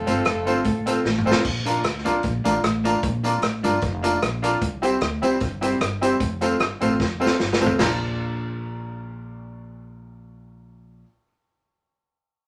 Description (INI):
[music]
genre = ska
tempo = 151 BPM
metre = 4/4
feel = swing 53% on 8ths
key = Bb major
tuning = A4 = 439 Hz
[part]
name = warm horn section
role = melody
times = 0.0-1.2 s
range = A3 to A4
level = -31 LUFS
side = equal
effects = none
[part]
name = upright bass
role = bass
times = 0.0-11.0 s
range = F1 to D2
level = -30 LUFS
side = equal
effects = none
[part]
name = archtop guitar, miked and amplified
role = accompaniment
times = 0.1-11.3 s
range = G3 to F4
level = -32 LUFS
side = equal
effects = none
[part]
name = clear upright piano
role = stabs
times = 0.1-11.0 s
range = C4 to D5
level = -26 LUFS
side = equal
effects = none
[part]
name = vintage drum kit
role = drums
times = 0.1-7.9 s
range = crash cymbal, hi-hat, kick drum, rim click, snare drum, toms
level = -28 LUFS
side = equal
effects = none
[part]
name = tambourine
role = percussion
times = 0.1-8.0 s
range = none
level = -41 LUFS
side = equal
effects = none
[sound]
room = wet studio ambience, RT60 0.5 s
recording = none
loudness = -22 LUFS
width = mono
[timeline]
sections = 0.0-1.4 A section; 1.4-7.8 B section; 7.8-11.0 C section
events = drum fill 1.0-1.4, 7.0-7.8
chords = 0.0 F; 1.4 Bb; 4.6 C; 6.2 F; 7.8 Bb